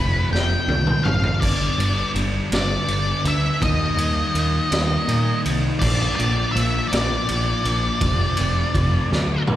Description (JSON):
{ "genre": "quiet-loud alternative rock", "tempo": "55 BPM (dotted quarters)", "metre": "6/8", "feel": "straight", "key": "unclear", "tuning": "A4 = 437 Hz", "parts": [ { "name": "octave-fuzz lead guitar", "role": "melody", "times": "0.0-9.4 s", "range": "B4 to G5", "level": "-24 LUFS", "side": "left 1 dB", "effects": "distortion, slapback echo, digital delay" }, { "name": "thick fuzz guitar", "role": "riff", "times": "0.0-9.6 s", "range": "F2 to Eb4", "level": "-25 LUFS", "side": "left 1 dB", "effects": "distortion, slapback echo" }, { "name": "growling picked electric bass", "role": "bass", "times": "0.0-9.6 s", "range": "F1 to Bb2", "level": "-22 LUFS", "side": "equal", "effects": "overdrive" }, { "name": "raw garage drum kit", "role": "drums", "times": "0.3-9.6 s", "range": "crash cymbal, kick drum, ride cymbal, snare drum, toms", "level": "-24 LUFS", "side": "equal", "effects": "none" } ], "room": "little or no reverb", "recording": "live gig heard through the venue's PA, recital hall reverb", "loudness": "-18 LUFS", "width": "side -12 dB against mid", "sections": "0.0-9.6 A section", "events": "drum fill 0.3-1.4, 9.1-9.6", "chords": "0.0 F; 1.4 G; 3.6 Eb; 5.8 Bb; 8.0 F", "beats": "0.32 | 1.42 2.52 | 3.61 4.71 | 5.81 6.91 | 8.01 9.11" }